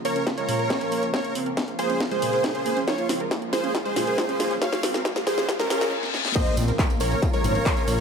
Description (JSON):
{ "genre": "uplifting trance", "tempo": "138 BPM", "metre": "4/4", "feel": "straight", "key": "Bb minor", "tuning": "A4 = 436 Hz", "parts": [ { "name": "lush unison pad", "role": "sustained chords", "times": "0.0-7.8 s", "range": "Db3 to F4", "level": "-34 LUFS", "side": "left 1 dB", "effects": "chorus, sidechain pumping" }, { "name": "wide unison pluck", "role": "arpeggios", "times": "0.0-7.9 s", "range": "Bb2 to Bb4", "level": "-31 LUFS", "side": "right 4 dB", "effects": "sidechain pumping, tape echo" }, { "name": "techno drum kit", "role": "drums", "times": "0.0-8.0 s", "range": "crash cymbal, handclaps, hi-hat, ride cymbal, snare drum", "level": "-28 LUFS", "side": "left 1 dB", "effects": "overdrive, studio reverb" }, { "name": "riser, reverse cymbal and impact", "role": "sound effects", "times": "2.8-8.0 s", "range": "none", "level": "-34 LUFS", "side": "left 4 dB", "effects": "none" }, { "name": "dense compressed supersaw", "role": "melody", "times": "0.1-8.0 s", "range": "Db4 to F5", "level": "-27 LUFS", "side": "equal", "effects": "sidechain pumping, tape echo" }, { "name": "plucky unison lead", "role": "second line", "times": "0.1-8.0 s", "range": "Bb4 to F5", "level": "-33 LUFS", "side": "right 1 dB", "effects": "none" }, { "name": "electronic kick drum", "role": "drums", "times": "0.3-7.7 s", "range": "none", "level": "-27 LUFS", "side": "left 1 dB", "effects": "distortion, overdrive, high-pass filter on kick, studio reverb" }, { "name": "tambourine", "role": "percussion", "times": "6.4-8.0 s", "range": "none", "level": "-40 LUFS", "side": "right 6 dB", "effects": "none" }, { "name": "fat analog bass", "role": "bass", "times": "6.6-8.0 s", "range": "Ab1 to Bb1", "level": "-24 LUFS", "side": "left 1 dB", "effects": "tube saturation, sidechain pumping" } ], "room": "light reverb", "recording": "high-pass filter", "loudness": "-22 LUFS", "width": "side -6 dB against mid", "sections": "0.0-6.4 A section; 6.4-8.0 B section", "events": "build-up 0.0-6.4; drum fill 0.0-5.9, 6.0-6.4; filter sweep 0.0-6.4; riser 2.8-6.4; reverse cymbal 5.5-6.4; drop 6.4-8.0; impact 6.4-8.0", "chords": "0.0 Bbm" }